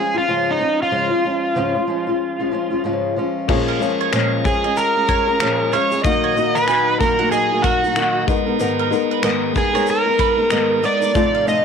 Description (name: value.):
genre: acoustic pop.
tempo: 94 BPM.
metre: 4/4.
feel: swing 60% on 16ths.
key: unclear.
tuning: A4 = 436 Hz.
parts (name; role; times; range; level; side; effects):
overdriven slide guitar; melody; 0.0-11.6 s; Eb4 to Eb5; -18 LUFS; right 1 dB; slapback echo.
fingerpicked steel-string acoustic guitar; accompaniment; 0.0-11.6 s; Ab2 to Bb4; -21 LUFS; left 1 dB; none.
warm upright piano; accompaniment; 3.5-11.6 s; Gb3 to F5; -26 LUFS; left 13 dB; none.
tonewheel organ; sustained chords; 3.5-11.6 s; A2 to Bb5; -27 LUFS; right 2 dB; overdrive, stopped rotary speaker.
modern studio drum kit; drums; 3.5-11.6 s; crash cymbal, finger snaps, kick drum, shaker; -24 LUFS; left 1 dB; none.
bowl-back mandolin; arpeggios; 3.7-11.5 s; Bb4 to Ab5; -26 LUFS; right 13 dB; none.
room: light reverb, small room ambience.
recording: 1960s-style stereo with parts hard left and right.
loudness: -16 LUFS.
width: side -6 dB against mid.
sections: 0.0-3.5 A section; 3.5-11.6 B section.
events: none.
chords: 0.0 Db/Ab; 3.5 Bbm7; 6.0 Ebm; 8.3 Abmadd9.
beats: 0.29 | 0.93 1.57 2.21 2.85 | 3.49 4.12 4.76 5.40 | 6.04 6.68 7.32 7.96 | 8.60 9.24 9.88 10.52 | 11.15.